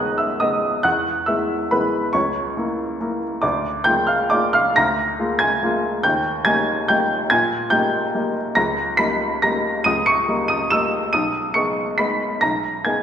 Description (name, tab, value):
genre	classical, piano waltz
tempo	128-151 BPM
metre	3/4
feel	rubato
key	unclear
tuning	A4 = 440 Hz
part	warm upright piano	solo	0.0-13.0 s	B1 to E7	-17 LUFS	equal	none
room	wet concert hall reverb, RT60 1.8 s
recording	recorded in a church or concert hall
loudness	-17 LUFS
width	side -9 dB against mid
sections	0.0-13.0 A section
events	none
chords	0.0 G#m; 0.8 E; 2.1 A#dim/C#; 3.4 A#7/D; 6.0 D#; 8.6 D#7/C#; 11.1 G#m/B